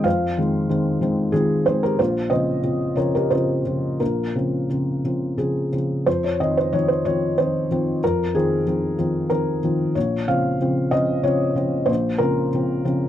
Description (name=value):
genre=neoclassical minimalist piano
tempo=92 BPM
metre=3/4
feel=rubato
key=Bb minor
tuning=A4 = 440 Hz
part: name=felt-muted upright piano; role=solo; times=0.0-13.1 s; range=Bb1 to F5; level=-19 LUFS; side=equal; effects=none
room=little or no reverb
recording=dry, close 1970s-style studio recording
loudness=-19 LUFS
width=side -11 dB against mid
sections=0.0-6.1 A section; 6.1-13.1 A section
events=none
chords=0.0 Fm7; 2.0 Bbmadd9; 6.1 Fm7; 10.0 Bbmadd9